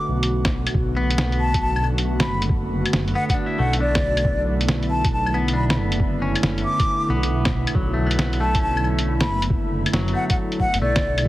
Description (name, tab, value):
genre	future garage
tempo	137 BPM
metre	4/4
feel	swing 65% on 16ths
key	B minor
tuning	A4 = 440 Hz
part	breathy concert flute	melody	0.0-11.3 s	D5 to D6	-26 LUFS	left 1 dB	analog delay
part	airy breathy pad	sustained chords	0.0-11.3 s	D3 to F#4	-27 LUFS	equal	chorus, vintage 12-bit sampler grit, sidechain pumping
part	dark detuned saw bass	bass	0.1-11.3 s	F#1 to B1	-23 LUFS	equal	tube saturation, sidechain pumping
part	lo-fi sampler-style drum kit	drums	0.2-11.2 s	claves, hi-hat, snare drum	-24 LUFS	equal	none
part	electronic kick drum	drums	0.4-11.3 s	none	-23 LUFS	equal	none
part	semi-hollow electric guitar	accompaniment	1.0-11.3 s	F#3 to E4	-30 LUFS	left 2 dB	sidechain pumping, tape echo
room	light reverb, digital ambience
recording	heavily compressed radio sound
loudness	-18 LUFS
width	side -16 dB against mid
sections	0.0-11.3 A section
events	none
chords	0.0 Bm7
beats	0.31 | 0.74 1.18 1.62 2.06 | 2.50 2.93 3.37 3.81 | 4.25 4.69 5.12 5.56 | 6.00 6.44 6.88 7.31 | 7.75 8.19 8.63 9.06 | 9.50 9.94 10.38 10.82 | 11.26